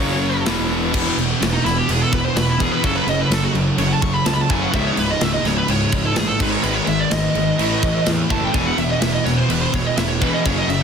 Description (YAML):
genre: heavy metal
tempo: 126 BPM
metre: 4/4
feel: straight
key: unclear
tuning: A4 = 440 Hz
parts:
  - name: high-gain lead guitar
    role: melody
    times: 0.0-10.8 s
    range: D#4 to C#6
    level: -23 LUFS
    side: right 1 dB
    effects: distortion, digital delay
  - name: distorted electric guitar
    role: riff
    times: 0.0-10.8 s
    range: C#2 to A3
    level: -24 LUFS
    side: left 10 dB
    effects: distortion
  - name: scooped high-gain guitar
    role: riff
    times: 0.0-10.8 s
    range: C#2 to A3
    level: -26 LUFS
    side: equal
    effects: distortion
  - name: sludgy distorted guitar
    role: riff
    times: 0.0-10.8 s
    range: C#2 to A3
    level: -24 LUFS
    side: right 8 dB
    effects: overdrive
  - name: fuzz picked electric bass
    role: bass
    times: 0.0-10.8 s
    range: C#1 to E2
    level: -25 LUFS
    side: equal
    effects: overdrive
  - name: tight metal drum kit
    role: drums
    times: 0.5-10.8 s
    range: crash cymbal, hi-hat, kick drum, snare drum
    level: -23 LUFS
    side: right 1 dB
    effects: none
  - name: brassy analog pad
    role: sustained chords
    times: 0.9-10.8 s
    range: C#3 to C#5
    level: -33 LUFS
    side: right 2 dB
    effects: none
room: small room ambience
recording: dense, heavily limited modern master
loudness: -16 LUFS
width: side -6 dB against mid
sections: 0.9-10.8 A section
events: lead electric guitar solo 0.9-10.8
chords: 0.0 F#5; 0.5 E5; 0.9 E; 2.8 F#m; 4.7 C#m; 6.4 G#m; 7.6 A; 8.5 E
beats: 0.46 | 0.94 1.41 1.89 2.36 | 2.84 3.31 3.79 4.26 | 4.74 5.21 5.69 6.16 | 6.64 7.12 7.59 8.07 | 8.55 9.02 9.50 9.98 | 10.45